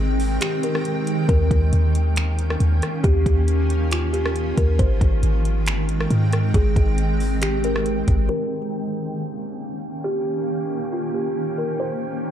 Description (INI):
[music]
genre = hip hop, atmospheric cloud-rap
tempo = 137 BPM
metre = 4/4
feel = half-time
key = unclear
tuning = A4 = 442 Hz
[part]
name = kalimba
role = melody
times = 0.0-12.3 s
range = F4 to C5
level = -27 LUFS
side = equal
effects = low-pass filter, digital delay
[part]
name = granular cloud pad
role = sustained chords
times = 0.0-12.3 s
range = Eb3 to G5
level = -25 LUFS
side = equal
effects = built-in reverb, sidechain pumping, low-pass filter
[part]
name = clean 808-style bass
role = bass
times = 0.0-8.3 s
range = Ab1 to Ab2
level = -20 LUFS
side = equal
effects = none
[part]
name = smooth R&B drum kit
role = drums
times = 0.2-8.2 s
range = finger snaps, hi-hat, kick drum, rim click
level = -22 LUFS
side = equal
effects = none
[sound]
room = little or no reverb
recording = dark, warm production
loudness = -19 LUFS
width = side -10 dB against mid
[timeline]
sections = 0.0-8.3 A section; 8.3-12.3 B section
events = kick muted 0.4-1.3; filter sweep 8.3-12.3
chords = 0.0 Abmaj7; 1.3 Eb7; 4.8 Abmaj7; 8.3 Eb7; 11.8 Abmaj7